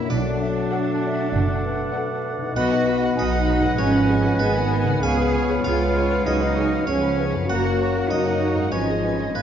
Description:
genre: cinematic, playful, whimsical film cue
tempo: 98 BPM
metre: 4/4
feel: straight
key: unclear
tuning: A4 = 440 Hz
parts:
  - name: harpsichord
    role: melody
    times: 0.0-9.4 s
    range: Cb5 to Ab5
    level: -32 LUFS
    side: right 2 dB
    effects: none
  - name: mellow French horn section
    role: sustained chords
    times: 0.0-9.4 s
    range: Eb3 to B3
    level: -27 LUFS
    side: left 5 dB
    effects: none
  - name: concert harp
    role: arpeggios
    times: 0.0-9.4 s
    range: Gb2 to Eb5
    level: -30 LUFS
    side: left 5 dB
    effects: none
  - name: warm studio cello section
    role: bass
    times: 0.0-9.4 s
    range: Cb4 to Ab4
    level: -26 LUFS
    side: right 2 dB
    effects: none
  - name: clear oboe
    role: second line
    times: 0.1-9.4 s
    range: F5 to Ab5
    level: -32 LUFS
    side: right 1 dB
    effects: none
  - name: mellow hollow concert flute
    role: second line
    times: 0.1-9.4 s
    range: Bb4 to Ab5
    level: -31 LUFS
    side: equal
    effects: none
  - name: warm clarinet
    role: second line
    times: 0.1-9.4 s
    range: Db5 to D#5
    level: -34 LUFS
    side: equal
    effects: none
  - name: mellow bassoon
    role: accompaniment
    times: 0.1-9.4 s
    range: Ab3 to B3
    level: -30 LUFS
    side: equal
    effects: none
  - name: warm studio double bass section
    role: bass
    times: 0.1-9.4 s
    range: F#1 to Db2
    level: -25 LUFS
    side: right 3 dB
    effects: none
  - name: rich studio violin section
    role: melody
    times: 0.7-9.4 s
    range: Eb5 to B5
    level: -34 LUFS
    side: left 5 dB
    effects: none
  - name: warm studio violin section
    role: second line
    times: 0.7-9.4 s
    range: Ab4 to Ab5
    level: -34 LUFS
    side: left 2 dB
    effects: none
  - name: rich studio viola section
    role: accompaniment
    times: 0.7-9.4 s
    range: Eb4 to B4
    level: -31 LUFS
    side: right 1 dB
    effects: none
room: wet scoring stage reverb, RT60 1.7 s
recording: dark, warm production, nothing above 7.6 kHz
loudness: -19 LUFS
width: side -9 dB against mid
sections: 0.0-9.4 A section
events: none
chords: 0.1 Bm7; 2.6 B; 3.8 Abm7; 5.0 Db7; 7.5 Gb; 8.7 Abm

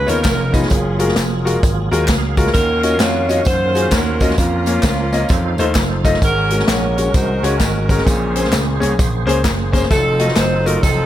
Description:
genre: uptempo gospel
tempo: 130 BPM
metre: 4/4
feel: swing 64% on 8ths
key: Bb minor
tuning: A4 = 440 Hz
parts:
  - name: clear saxophone section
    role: melody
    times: 0.0-11.1 s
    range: Bb3 to Db5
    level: -20 LUFS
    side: equal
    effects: tape echo
  - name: bright concert grand piano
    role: accompaniment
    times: 0.0-10.8 s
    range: Ab2 to Eb5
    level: -20 LUFS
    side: left 3 dB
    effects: none
  - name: tonewheel organ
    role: sustained chords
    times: 0.0-11.1 s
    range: Db3 to Ab5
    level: -25 LUFS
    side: right 4 dB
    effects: fast rotary speaker, chorus vibrato
  - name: vintage slap bass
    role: bass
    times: 0.0-11.1 s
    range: F1 to Gb2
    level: -20 LUFS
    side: equal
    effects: none
  - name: swinging big-band drum kit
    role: drums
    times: 0.1-11.0 s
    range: hi-hat, kick drum, snare drum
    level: -18 LUFS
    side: equal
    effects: none
  - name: tambourine and handclaps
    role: percussion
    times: 0.1-11.0 s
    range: none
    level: -28 LUFS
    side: left 1 dB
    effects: none
room: small room ambience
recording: none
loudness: -13 LUFS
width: side -12 dB against mid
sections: 0.0-11.1 A section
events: none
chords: 0.0 Db9; 0.7 Gbmaj9; 2.5 Ebm9; 4.4 Bbm/F; 5.3 F7; 6.2 Ab9sus4; 8.1 Bbm9; 9.9 F7b9

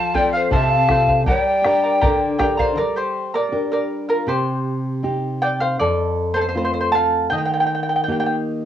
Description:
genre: andean folk, Andean ensemble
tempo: 79 BPM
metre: 2/4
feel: straight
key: G minor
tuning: A4 = 440 Hz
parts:
  - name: breathy bright quena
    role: melody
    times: 0.0-2.4 s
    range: F5 to A5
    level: -20 LUFS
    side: equal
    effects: cassette tape
  - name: mellow hollow pan flute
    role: second line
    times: 0.0-2.4 s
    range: C5 to F5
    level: -20 LUFS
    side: left 4 dB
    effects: cassette tape
  - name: charango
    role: accompaniment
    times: 0.0-8.3 s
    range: F4 to Bb5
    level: -20 LUFS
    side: right 1 dB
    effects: cassette tape
  - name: nylon-string guitar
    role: accompaniment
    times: 0.0-8.7 s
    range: F2 to Bb4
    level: -23 LUFS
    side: equal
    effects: cassette tape
  - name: bombo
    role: percussion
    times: 0.1-2.8 s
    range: none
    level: -23 LUFS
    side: equal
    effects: none
room: moderate small room reverb, RT60 0.6 s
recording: home recording on cassette, small room ambience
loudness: -17 LUFS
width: side -10 dB against mid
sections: 0.0-2.8 A section; 2.8-8.7 B section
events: charango solo 2.8-8.7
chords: 0.0 F; 1.3 Gm; 4.3 Cm; 5.8 F; 7.3 Eb

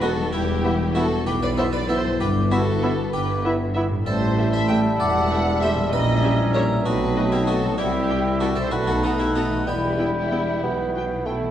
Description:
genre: cinematic, playful, whimsical film cue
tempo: 64 BPM (dotted quarters)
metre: 6/8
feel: straight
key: E minor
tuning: A4 = 440 Hz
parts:
  - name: harpsichord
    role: melody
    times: 0.0-11.2 s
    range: B3 to E5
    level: -30 LUFS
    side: left 1 dB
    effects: none
  - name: rich studio violin section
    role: melody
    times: 0.0-11.3 s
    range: D#5 to A5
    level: -38 LUFS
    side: left 4 dB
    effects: none
  - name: clear clarinet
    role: second line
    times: 0.0-11.2 s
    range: C4 to E4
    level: -32 LUFS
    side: left 1 dB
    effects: none
  - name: clear oboe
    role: second line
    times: 0.0-11.3 s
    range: D#5 to G5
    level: -33 LUFS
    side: right 1 dB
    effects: none
  - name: mellow silver concert flute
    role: second line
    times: 0.0-11.2 s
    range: G5 to B5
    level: -32 LUFS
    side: left 1 dB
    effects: none
  - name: rich studio violin section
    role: second line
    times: 0.0-11.2 s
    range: E4 to G5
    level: -28 LUFS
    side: left 1 dB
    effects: none
  - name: rich studio viola section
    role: accompaniment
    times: 0.0-11.5 s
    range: G3 to G4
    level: -31 LUFS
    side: right 1 dB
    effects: none
  - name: warm bassoon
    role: accompaniment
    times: 0.0-11.5 s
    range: F#3 to B3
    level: -28 LUFS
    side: right 2 dB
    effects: none
  - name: dark French horn section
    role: sustained chords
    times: 0.0-11.3 s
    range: G3 to E4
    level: -29 LUFS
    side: left 3 dB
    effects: none
  - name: concert harp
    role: arpeggios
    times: 0.0-11.5 s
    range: G2 to C#5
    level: -30 LUFS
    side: left 7 dB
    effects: none
  - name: mellow tuba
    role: bass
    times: 0.0-11.4 s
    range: E1 to C2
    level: -29 LUFS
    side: right 2 dB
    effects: none
  - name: rich studio cello section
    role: bass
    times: 0.0-11.4 s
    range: E2 to C3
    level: -28 LUFS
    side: right 2 dB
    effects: none
  - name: rich studio double bass section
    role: bass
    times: 0.0-11.4 s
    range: E1 to C2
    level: -29 LUFS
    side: right 2 dB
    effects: none
room: wet scoring stage reverb, RT60 2.0 s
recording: worn, warbling old tape, cassette tape, warbly pitch drift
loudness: -19 LUFS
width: side -10 dB against mid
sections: 0.0-11.5 A section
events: none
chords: 0.3 Em; 2.2 Em/G; 4.1 A5; 5.9 A#dim7; 6.9 B7b9; 7.8 C; 8.7 B7; 9.7 Em

